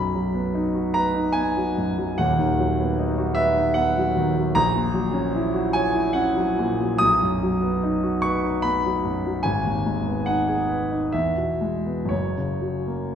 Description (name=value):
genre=classical, romantic nocturne for solo piano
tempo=58-79 BPM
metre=3/4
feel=rubato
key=B major from 4.5 s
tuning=A4 = 440 Hz
part: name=warm concert grand piano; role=solo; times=0.0-13.2 s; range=D#1 to D#6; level=-20 LUFS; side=equal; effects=none
room=wet scoring stage reverb, RT60 1.5 s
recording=recorded in a church or concert hall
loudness=-20 LUFS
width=side -8 dB against mid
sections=0.0-13.2 A section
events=none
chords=0.0 B; 2.2 B/D#; 4.5 F#7/A#; 7.0 B; 9.5 G#m; 11.1 E; 12.1 F#